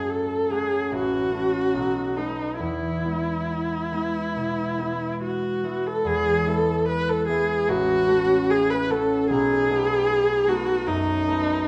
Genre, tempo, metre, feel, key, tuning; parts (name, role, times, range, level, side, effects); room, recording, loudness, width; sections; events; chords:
classical, romantic duo for viola and harp; 67-77 BPM; 4/4; rubato; E major; A4 = 440 Hz
rich viola; melody; 0.0-11.7 s; D#4 to B4; -25 LUFS; equal
concert harp; accompaniment; 0.0-11.7 s; A1 to F#4; -29 LUFS; equal
moderate recital hall reverb, RT60 1.4 s; -24 LUFS; mono
0.0-6.1 A section; 6.1-11.7 A section
0.0 F#m; 0.9 F#m/A; 1.7 B7; 2.6 E; 7.7 F#m/A; 9.3 B7